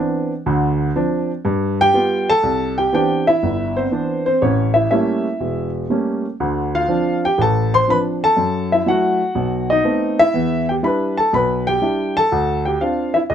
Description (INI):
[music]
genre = solo jazz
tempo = 122 BPM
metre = 4/4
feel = swing 67% on 8ths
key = unclear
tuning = A4 = 438 Hz
[part]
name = warm baby grand piano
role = solo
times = 0.0-13.3 s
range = E1 to C6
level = -16 LUFS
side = equal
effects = none
[sound]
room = light reverb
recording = nothing above 10.8 kHz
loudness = -16 LUFS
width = side -9 dB against mid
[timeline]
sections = 0.0-2.4 A section; 2.4-13.3 B section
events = grand piano solo 0.0-2.4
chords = 0.5 Dm7; 1.4 G7; 2.4 Cmaj9; 4.4 A7b9; 6.4 Dm7; 8.4 F#m7; 9.4 B7b9; 10.3 Em7; 12.3 Dm7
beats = | 0.46 0.95 1.45 1.94 | 2.44 2.93 3.42 3.92 | 4.41 4.91 5.40 5.89 | 6.39 6.88 7.38 7.87 | 8.37 8.86 9.35 9.85 | 10.34 10.84 11.33 11.82 | 12.32 12.81 13.30